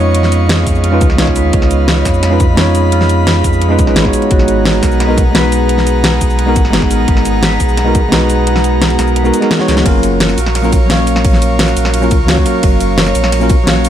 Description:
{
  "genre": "liquid drum and bass",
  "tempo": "173 BPM",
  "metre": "4/4",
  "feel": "straight",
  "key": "unclear",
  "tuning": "A4 = 438 Hz",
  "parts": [
    { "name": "bell-like tine electric piano", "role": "accompaniment", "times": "0.0-13.9 s", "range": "F#3 to E#5", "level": "-15 LUFS", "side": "equal", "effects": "digital delay" },
    { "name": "airy breathy pad", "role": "sustained chords", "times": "0.0-13.9 s", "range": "B3 to C#6", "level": "-19 LUFS", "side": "equal", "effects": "chorus" },
    { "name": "concert harp", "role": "arpeggios", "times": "0.0-13.9 s", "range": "E#4 to F#5", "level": "-20 LUFS", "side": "right 5 dB", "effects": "vintage 12-bit sampler grit, digital delay" },
    { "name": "sub bass with octave", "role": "bass", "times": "0.0-13.9 s", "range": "F#1 to E#2", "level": "-15 LUFS", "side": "equal", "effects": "none" },
    { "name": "pop drum kit", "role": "drums", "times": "0.1-13.9 s", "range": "cabasa, hi-hat, ride cymbal, snare drum", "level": "-16 LUFS", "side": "equal", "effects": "none" },
    { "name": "electronic kick drum", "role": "drums", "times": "0.7-13.6 s", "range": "none", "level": "-14 LUFS", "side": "equal", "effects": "none" }
  ],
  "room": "digital ambience",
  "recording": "none",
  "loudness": "-9 LUFS",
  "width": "side -10 dB against mid",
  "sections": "0.0-9.9 A section; 9.9-13.9 A section",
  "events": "drop 0.0-9.9, 9.9-13.9; kick drops out 8.5-9.9; drum fill 9.6",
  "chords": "0.0 C#9; 4.1 G#m9; 9.9 F#maj7"
}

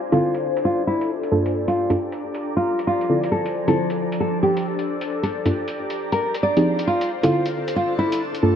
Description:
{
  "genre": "UK garage, two-step garage",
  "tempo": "135 BPM",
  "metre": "4/4",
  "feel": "swing 63% on 16ths",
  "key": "D minor",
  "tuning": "A4 = 440 Hz",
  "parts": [
    { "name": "ethereal airy pad", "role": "texture", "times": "0.0-8.6 s", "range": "F3 to Bb5", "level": "-26 LUFS", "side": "left 1 dB", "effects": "ensemble chorus, built-in reverb, phaser" },
    { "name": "nylon-string guitar", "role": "melody", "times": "0.1-8.2 s", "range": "E4 to D5", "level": "-23 LUFS", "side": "equal", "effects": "ping-pong delay" },
    { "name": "deep mellow chord stab", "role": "stabs", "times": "0.1-8.6 s", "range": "G2 to A4", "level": "-22 LUFS", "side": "equal", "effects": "chorus, vintage 12-bit sampler grit, ping-pong delay" },
    { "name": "electronic hi-hat", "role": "drums", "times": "0.1-8.4 s", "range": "none", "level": "-38 LUFS", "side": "equal", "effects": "overdrive, low-pass filter on hats, low-pass filter on room" }
  ],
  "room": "moderate plate reverb, RT60 1.5 s",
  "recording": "vinyl crackle, low-pass filter",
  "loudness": "-19 LUFS",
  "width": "side -8 dB against mid",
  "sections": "0.0-8.6 A section",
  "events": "filter sweep on synth stab 0.0-8.6; filter sweep 0.0-8.6",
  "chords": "0.0 Dm9; 1.3 Gm9; 2.4 Fm; 4.9 Gmadd9; 6.0 Fm9; 6.9 Dm9"
}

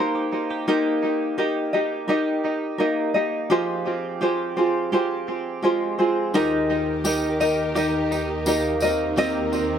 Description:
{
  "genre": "acoustic pop",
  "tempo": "85 BPM",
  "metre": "4/4",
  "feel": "straight",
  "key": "Eb major",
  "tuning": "A4 = 440 Hz",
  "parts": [
    { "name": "tenor ukulele", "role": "accompaniment", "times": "0.0-9.8 s", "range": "C4 to Eb5", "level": "-21 LUFS", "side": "equal", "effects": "tape echo" },
    { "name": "direct-recorded clean electric guitar", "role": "arpeggios", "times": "0.0-9.8 s", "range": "Eb3 to G4", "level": "-29 LUFS", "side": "right 4 dB", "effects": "analog chorus, tape echo" },
    { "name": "warm symphonic string section", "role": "sustained chords", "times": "6.3-9.8 s", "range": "Eb2 to Bb4", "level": "-28 LUFS", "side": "left 1 dB", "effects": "none" },
    { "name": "tambourine", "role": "percussion", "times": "6.3-9.7 s", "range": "none", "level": "-34 LUFS", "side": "left 2 dB", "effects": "tape echo" }
  ],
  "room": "moderate spring reverb, RT60 1.5 s",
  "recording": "echo-heavy mix",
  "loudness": "-20 LUFS",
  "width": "side -8 dB against mid",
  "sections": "0.7-9.8 A section",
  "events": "none",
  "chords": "0.0 Cm7; 0.7 Eb; 3.5 Fmadd9; 6.3 Eb; 8.8 Cm7/Eb"
}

